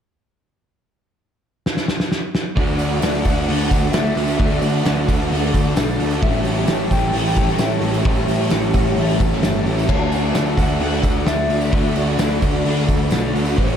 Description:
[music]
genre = rock, shoegaze and dream pop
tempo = 131 BPM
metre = 4/4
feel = straight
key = D major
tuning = A4 = 440 Hz
[part]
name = loose indie drum kit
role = drums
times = 1.7-13.7 s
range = crash cymbal, hi-hat, kick drum, snare drum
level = -21 LUFS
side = equal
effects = none
[part]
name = electric guitar through a small old amp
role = melody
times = 2.6-13.8 s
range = C#5 to G5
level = -28 LUFS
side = left 1 dB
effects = lush chorus, tape echo
[part]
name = brassy analog pad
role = sustained chords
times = 2.6-13.8 s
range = F#4 to B5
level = -29 LUFS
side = left 1 dB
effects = chorus
[part]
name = electric guitar through a small old amp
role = arpeggios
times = 2.6-13.8 s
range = E3 to G4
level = -29 LUFS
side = left 2 dB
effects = none
[part]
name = overdriven electric guitar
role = riff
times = 2.6-13.8 s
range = A2 to G4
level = -29 LUFS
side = equal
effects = none
[part]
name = raw garage guitar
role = riff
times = 2.6-13.8 s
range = A2 to G4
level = -24 LUFS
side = right 7 dB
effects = overdrive, reverse reverb
[part]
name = thick fuzz guitar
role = riff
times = 2.6-13.8 s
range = A2 to D4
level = -24 LUFS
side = left 7 dB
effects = distortion, lush chorus
[part]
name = fuzz picked electric bass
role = bass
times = 2.6-13.8 s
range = G1 to D2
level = -22 LUFS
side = equal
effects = overdrive
[part]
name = tambourine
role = percussion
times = 2.8-13.6 s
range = none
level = -42 LUFS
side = right 14 dB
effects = none
[sound]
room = moderate lush hall reverb, RT60 2.2 s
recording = dreamy mix soaked in reverb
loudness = -16 LUFS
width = side -8 dB against mid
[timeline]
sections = 0.7-2.6 A section; 2.6-13.8 B section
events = drum fill 1.6-2.6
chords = 0.7 N.C.; 2.6 Dadd9; 6.2 A7; 9.9 Dadd9

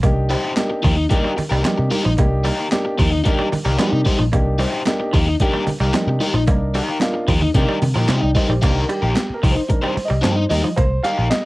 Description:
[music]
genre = funk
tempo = 112 BPM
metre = 4/4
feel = straight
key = C minor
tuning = A4 = 439 Hz
[part]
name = semi-hollow electric guitar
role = riff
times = 0.0-11.2 s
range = F3 to Bb3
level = -26 LUFS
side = right 3 dB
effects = cassette tape
[part]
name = dark upright piano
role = stabs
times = 0.0-11.5 s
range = Eb3 to G5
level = -24 LUFS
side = right 1 dB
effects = cassette tape
[part]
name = vintage muted picked electric bass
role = bass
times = 0.0-11.3 s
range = Bb1 to C3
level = -19 LUFS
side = equal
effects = none
[part]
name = breakbeat sampler-style drum kit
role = drums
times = 0.0-11.4 s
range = crash cymbal, handclaps, hi-hat, kick drum, snare drum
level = -21 LUFS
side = equal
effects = overdrive, cassette tape
[part]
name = congas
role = percussion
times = 0.0-11.4 s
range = none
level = -27 LUFS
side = right 3 dB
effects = none
[part]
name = crunchy overdriven guitar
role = accompaniment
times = 0.3-11.3 s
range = Eb4 to C5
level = -22 LUFS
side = left 2 dB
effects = phaser, cassette tape
[sound]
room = little or no reverb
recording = home recording on cassette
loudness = -16 LUFS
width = side -20 dB against mid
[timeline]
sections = 0.0-8.6 A section; 8.6-11.5 B section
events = upright piano solo 8.6-11.5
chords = 0.0 Cm7

